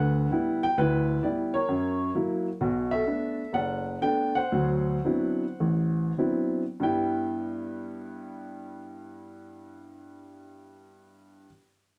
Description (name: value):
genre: solo jazz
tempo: 92-131 BPM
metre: 4/4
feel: swing 67% on 8ths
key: G major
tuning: A4 = 438 Hz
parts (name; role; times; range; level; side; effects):
- warm upright piano; solo; 0.0-11.5 s; F#1 to G5; -28 LUFS; equal; none
room: moderate stone room reverb, RT60 1.1 s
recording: band playing live in one room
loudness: -27 LUFS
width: mono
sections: 0.0-2.6 A section; 2.6-6.8 B section; 6.8-12.0 C section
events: slowing down 2.6-6.8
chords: 0.0 G6; 1.7 F#7; 2.6 Bm7; 4.5 D13; 6.8 G6